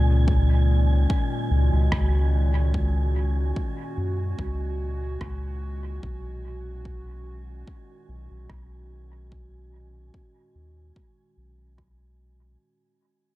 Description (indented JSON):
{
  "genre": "ambient dub",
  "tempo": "73 BPM",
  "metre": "4/4",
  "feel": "swing 54% on 16ths",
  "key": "unclear",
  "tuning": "A4 = 442 Hz",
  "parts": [
    { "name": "warbly tape-like pad", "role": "sustained chords", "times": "0.0-12.6 s", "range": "Bb2 to Gb4", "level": "-30 LUFS", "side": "equal", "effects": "chorus, built-in reverb, vintage 12-bit sampler grit" },
    { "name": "round analog bass", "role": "bass", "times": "0.0-12.6 s", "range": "Cb2 to Gb2", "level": "-23 LUFS", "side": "equal", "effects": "none" },
    { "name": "wind-like tuned noise texture", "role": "texture", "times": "0.0-12.6 s", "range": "Ab5", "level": "-39 LUFS", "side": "right 6 dB", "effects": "built-in reverb" },
    { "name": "electronic kick drum", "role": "drums", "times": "0.3-12.0 s", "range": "none", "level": "-29 LUFS", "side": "equal", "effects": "overdrive, studio reverb" },
    { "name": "rim click", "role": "drums", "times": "1.9-12.0 s", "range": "none", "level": "-38 LUFS", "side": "right 1 dB", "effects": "low-pass filter on snare, studio reverb, low-pass filter on perc, low-pass filter on room, dub echo" }
  ],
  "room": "little or no reverb",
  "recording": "echo-heavy mix",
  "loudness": "-21 LUFS",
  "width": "side -17 dB against mid",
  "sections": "0.0-12.6 A section",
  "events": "fade-out 0.0-12.6; filter sweep on drum 0.0-12.6",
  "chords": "0.0 Dbsus4; 6.0 Cb6"
}